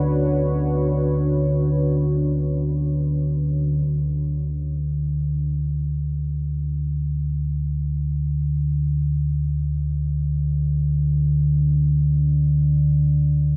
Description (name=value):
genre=dark ambient drone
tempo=free time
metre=none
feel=none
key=unclear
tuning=A4 = 439 Hz
part: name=dark analog pad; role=sustained chords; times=0.0-3.8 s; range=D4 to C#5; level=-29 LUFS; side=equal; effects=chorus
part: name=deep rumbling drone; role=drone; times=0.0-13.6 s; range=D2 to D3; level=-22 LUFS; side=equal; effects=built-in reverb
room=wet cathedral reverb, RT60 5.5 s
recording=in a vast, echoing space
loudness=-22 LUFS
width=mono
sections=0.0-3.8 A section; 3.8-13.6 B section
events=none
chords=0.0 Bm; 3.8 N.C.